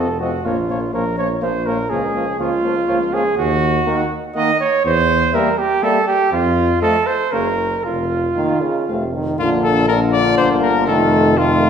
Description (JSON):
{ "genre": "classical, brass quintet", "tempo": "122 BPM", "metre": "3/4", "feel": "straight", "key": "Bb minor", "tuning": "A4 = 436 Hz", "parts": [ { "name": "warm cornet", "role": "melody", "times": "0.0-11.7 s", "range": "F4 to Gb5", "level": "-22 LUFS", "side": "left 4 dB", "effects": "none" }, { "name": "mellow trumpet", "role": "second line", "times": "0.0-11.7 s", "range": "F4 to Eb5", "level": "-18 LUFS", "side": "right 3 dB", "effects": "none" }, { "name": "bright trombone", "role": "accompaniment", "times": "0.0-11.7 s", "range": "C3 to G3", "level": "-23 LUFS", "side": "equal", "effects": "none" }, { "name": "warm French horn", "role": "accompaniment", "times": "0.0-11.7 s", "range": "A3 to C4", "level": "-24 LUFS", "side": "left 2 dB", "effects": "none" }, { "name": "warm tuba", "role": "bass", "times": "0.0-11.7 s", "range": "F1 to F2", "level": "-22 LUFS", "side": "right 1 dB", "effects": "none" } ], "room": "wet recital hall reverb, RT60 1.4 s", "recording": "recorded in a church or concert hall", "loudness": "-15 LUFS", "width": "side -7 dB against mid", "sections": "0.0-9.4 A section; 9.4-11.7 A section", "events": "none", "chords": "0.5 Bbm; 1.9 Bbm/Db; 3.4 Ebm; 4.8 Edim; 6.3 F; 7.3 Gb; 7.8 Bbm/F; 8.9 F; 9.4 Bb; 10.9 F7" }